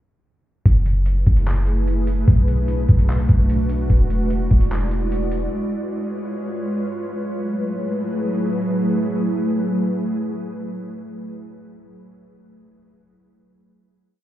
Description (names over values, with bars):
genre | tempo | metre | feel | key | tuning
hip hop, atmospheric cloud-rap | 148 BPM | 4/4 | half-time | F# minor | A4 = 440 Hz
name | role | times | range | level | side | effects
ethereal airy pad | sustained chords | 1.2-11.1 s | F#3 to D5 | -23 LUFS | equal | ensemble chorus, built-in reverb, sidechain pumping
clean 808-style bass | bass | 0.7-5.5 s | E1 to B1 | -18 LUFS | equal | none
lo-fi sampler-style drum kit | drums | 0.7-5.4 s | handclaps, hi-hat, kick drum | -17 LUFS | equal | none
room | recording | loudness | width
little or no reverb | heard muffled through a wall, stone room reverb, EQ | -18 LUFS | side -13 dB against mid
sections
0.7-7.1 verse; 7.1-10.4 final chord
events
none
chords
0.7 F#m11; 2.3 Bm7; 3.9 E9; 5.5 C#7; 7.1 F#m11